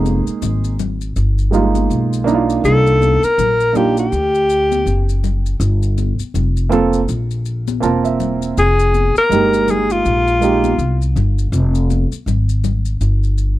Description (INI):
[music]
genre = hip hop, jazz-hop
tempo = 81 BPM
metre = 4/4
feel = swing 59% on 16ths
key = F minor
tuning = A4 = 439 Hz
[part]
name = dark concert grand piano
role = accompaniment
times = 0.0-10.7 s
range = G3 to A5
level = -17 LUFS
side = right 5 dB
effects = none
[part]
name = upright bass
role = bass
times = 0.0-13.6 s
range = E1 to D2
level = -17 LUFS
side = equal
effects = none
[part]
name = congas and maracas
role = percussion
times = 0.1-13.6 s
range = none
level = -27 LUFS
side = left 11 dB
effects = none
[part]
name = breathy alto saxophone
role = melody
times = 2.6-11.2 s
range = F4 to Bb4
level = -15 LUFS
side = left 2 dB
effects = none
[sound]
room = small room ambience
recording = dry, close 1970s-style studio recording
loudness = -13 LUFS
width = side -15 dB against mid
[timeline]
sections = 0.0-13.6 A section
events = grand piano fill 7.5-8.6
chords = 0.0 Fm11; 2.6 Cm11; 5.6 Gm11; 8.6 Fm11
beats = 0.42 1.16 1.90 | 2.64 3.38 4.12 4.86 | 5.60 6.34 7.08 7.82 | 8.56 9.30 10.04 10.79 | 11.53 12.27 13.01